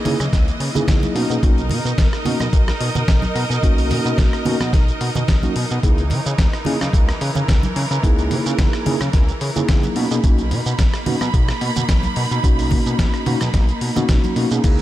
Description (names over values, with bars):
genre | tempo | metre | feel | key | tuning
nu-disco, nu disco | 109 BPM | 4/4 | swing 54% on 16ths | unclear | A4 = 441 Hz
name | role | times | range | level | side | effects
mellow tine electric piano | accompaniment | 0.0-14.8 s | A#3 to G#4 | -24 LUFS | equal | medium stereo tremolo, vintage 12-bit sampler grit, sidechain pumping, tape echo
rich studio string section | sustained chords | 0.0-14.8 s | E3 to B5 | -26 LUFS | right 2 dB | sidechain pumping
fat analog bass | bass | 0.1-14.8 s | B1 to C#3 | -22 LUFS | equal | sidechain pumping
dusty soul sampler-style drum kit | drums | 0.1-14.8 s | crash cymbal, hi-hat, rim click, shaker, snare drum | -26 LUFS | left 1 dB | none
congas | percussion | 0.1-14.3 s | none | -28 LUFS | right 3 dB | none
electronic kick drum | drums | 0.3-14.8 s | none | -17 LUFS | equal | none
room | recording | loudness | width
light reverb, digital ambience | none | -16 LUFS | side -14 dB against mid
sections
0.0-14.8 A section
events
none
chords
0.0 C#m69; 1.2 Bmaj7; 5.8 C#m69; 10.0 Bmaj7